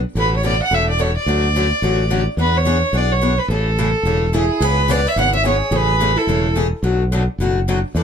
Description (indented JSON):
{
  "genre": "acoustic string swing (jazz manouche)",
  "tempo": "216 BPM",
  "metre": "4/4",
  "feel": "swing 58% on 8ths",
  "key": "A major",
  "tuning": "A4 = 440 Hz",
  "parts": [
    { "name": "fingered electric bass", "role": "bass", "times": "0.0-8.0 s", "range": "E1 to E2", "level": "-19 LUFS", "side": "equal", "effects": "none" },
    { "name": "warm violin", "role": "melody", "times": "0.2-6.6 s", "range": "G#4 to F#5", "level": "-19 LUFS", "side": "right 1 dB", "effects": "none" },
    { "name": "picked steel-string acoustic guitar", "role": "accompaniment", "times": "0.2-8.0 s", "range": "B2 to A4", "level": "-22 LUFS", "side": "left 4 dB", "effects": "none" },
    { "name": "picked acoustic archtop guitar", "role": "second line", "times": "4.3-6.6 s", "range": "E4 to C#5", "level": "-23 LUFS", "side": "right 4 dB", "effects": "none" }
  ],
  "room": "little or no reverb",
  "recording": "close, detailed microphones, lossy compression artefacts",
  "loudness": "-15 LUFS",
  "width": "side -7 dB against mid",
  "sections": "0.0-4.6 A section; 4.6-8.0 B section",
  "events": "none",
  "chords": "0.2 Aadd9; 1.3 Dmaj7; 2.4 E7; 3.5 Amaj7; 4.6 C#m7; 5.7 Amaj7; 6.8 Bm7"
}